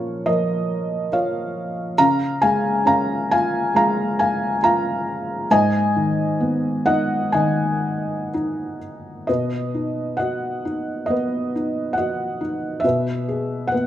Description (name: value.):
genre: classical, lyrical solo piano.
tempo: 60-70 BPM.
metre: 4/4.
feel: rubato.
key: G# dorian, B major from 9.3 s.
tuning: A4 = 440 Hz.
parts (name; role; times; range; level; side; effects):
felt-muted upright piano; solo; 0.0-13.9 s; G#2 to A#5; -19 LUFS; equal; none.
room: moderate recital hall reverb, RT60 1.4 s.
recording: none.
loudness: -19 LUFS.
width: side -12 dB against mid.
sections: 0.0-9.3 A section; 9.3-13.9 B section.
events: none.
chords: 0.0 A#m; 2.0 C#; 5.5 G#m; 9.3 B; 12.8 E/B.